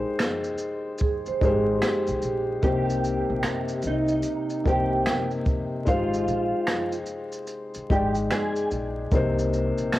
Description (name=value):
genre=lo-fi hip hop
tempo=74 BPM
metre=4/4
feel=swing 64% on 16ths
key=unclear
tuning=A4 = 440 Hz
part: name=felt-muted upright piano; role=accompaniment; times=0.0-10.0 s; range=C3 to G5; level=-27 LUFS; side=left 2 dB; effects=cassette tape, low-pass filter
part: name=upright bass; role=bass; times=0.0-9.9 s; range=Ab1 to C2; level=-30 LUFS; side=equal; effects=none
part: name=jazz brush drum kit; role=drums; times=0.2-10.0 s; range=finger snaps, hi-hat, kick drum, shaker, snare drum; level=-27 LUFS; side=equal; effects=cassette tape
part: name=vibraphone with soft mallets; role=second line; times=1.0-2.6 s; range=G4 to C5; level=-27 LUFS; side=right 5 dB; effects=low-pass filter, cassette tape, tape echo
part: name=electric guitar through a small old amp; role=melody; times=2.6-8.7 s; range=Eb4 to Ab4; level=-27 LUFS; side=right 1 dB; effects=ensemble chorus, low-pass filter
room=moderate spring reverb, RT60 2.2 s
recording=home recording on cassette, vinyl crackle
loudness=-22 LUFS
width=side -15 dB against mid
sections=0.0-10.0 A section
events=none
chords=0.0 Abmaj7; 2.6 Cm7; 5.9 Abmaj7; 9.1 Cm7